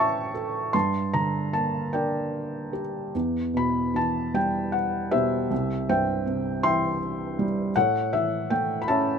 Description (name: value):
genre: classical, lyrical solo piano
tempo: 49-54 BPM (dotted quarters)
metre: 6/8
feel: rubato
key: E minor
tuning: A4 = 440 Hz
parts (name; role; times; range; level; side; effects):
- felt-muted upright piano; solo; 0.0-9.2 s; C2 to C#6; -23 LUFS; equal; none
room: light reverb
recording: close, detailed microphones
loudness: -23 LUFS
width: side -6 dB against mid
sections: 0.0-9.2 A section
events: none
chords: 0.0 A; 0.7 Gmadd9; 3.1 Em; 5.5 C; 7.8 A